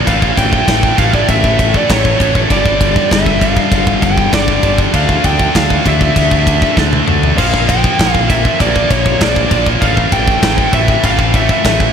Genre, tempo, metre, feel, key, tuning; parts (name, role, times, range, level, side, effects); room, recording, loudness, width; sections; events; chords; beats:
heavy metal; 98 BPM; 4/4; straight; A4 = 440 Hz
heavy high-gain guitar; riff; 0.0-11.9 s; G2 to D4; -17 LUFS; right 11 dB; distortion
scooped high-gain guitar; riff; 0.0-11.9 s; G2 to D4; -19 LUFS; left 12 dB; distortion
high-gain lead guitar; melody; 0.1-11.9 s; C#5 to G5; -16 LUFS; equal; distortion, slapback echo, digital delay
growling picked electric bass; bass; 0.1-11.9 s; G1 to D2; -17 LUFS; equal; overdrive
tight metal drum kit; drums; 0.1-11.9 s; crash cymbal, kick drum, ride cymbal, snare drum, toms; -15 LUFS; equal
light reverb, studio ambience; -10 LUFS; side -7 dB against mid
0.0-11.9 A section
drum fill 6.8-7.4
0.1 A5; 2.5 G5; 4.9 D5; 7.4 Bb5; 9.8 A5
| 0.07 0.68 1.29 1.90 | 2.51 3.12 3.73 4.33 | 4.95 5.55 6.16 6.77 | 7.38 7.99 8.60 9.21 | 9.82 10.43 11.04 11.64